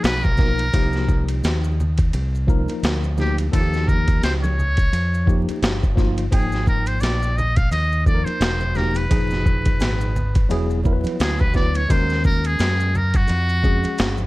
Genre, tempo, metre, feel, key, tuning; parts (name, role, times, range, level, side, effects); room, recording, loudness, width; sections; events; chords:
hip hop, jazz-hop; 86 BPM; 4/4; swing 57% on 16ths; A4 = 439 Hz
trumpet with metal mute; melody; 0.0-14.2 s; Gb4 to F5; -25 LUFS; equal
tine electric piano; accompaniment; 0.0-14.2 s; Bb2 to G5; -26 LUFS; left 1 dB; overdrive, medium stereo tremolo
deep dub fingered electric bass; bass; 0.0-14.3 s; E1 to Gb2; -22 LUFS; equal
boom bap sampler-style drum kit; drums; 0.0-14.2 s; hi-hat, kick drum, ride cymbal, snare drum; -20 LUFS; equal
maracas and congas; percussion; 0.0-14.3 s; -32 LUFS; right 1 dB
little or no reverb; vinyl crackle; -17 LUFS; side -19 dB against mid
0.0-14.3 A section
muted trumpet solo 0.0-14.3
0.0 Db13 (rootless); 0.7 Cm9; 3.5 Eb7; 6.3 Absus2; 9.1 Fm7b5; 10.5 E9; 11.9 Ebm7